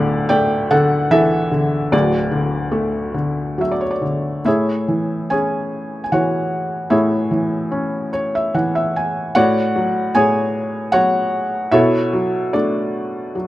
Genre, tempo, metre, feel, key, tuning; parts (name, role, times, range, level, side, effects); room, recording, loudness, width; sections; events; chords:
classical, lyrical solo piano; 68-77 BPM; 3/4; rubato; D major, A major from 4.5 s; A4 = 440 Hz
felt-muted upright piano; solo; 0.0-13.5 s; D1 to G#5; -16 LUFS; equal
light reverb; close, detailed microphones; -16 LUFS; side -15 dB against mid
0.0-4.5 A section; 4.5-13.5 B section
felt piano fill 7.7-9.4
0.0 Dsus2; 1.9 D; 4.5 Amaj7; 9.4 Dmaj7/A; 11.7 Bm9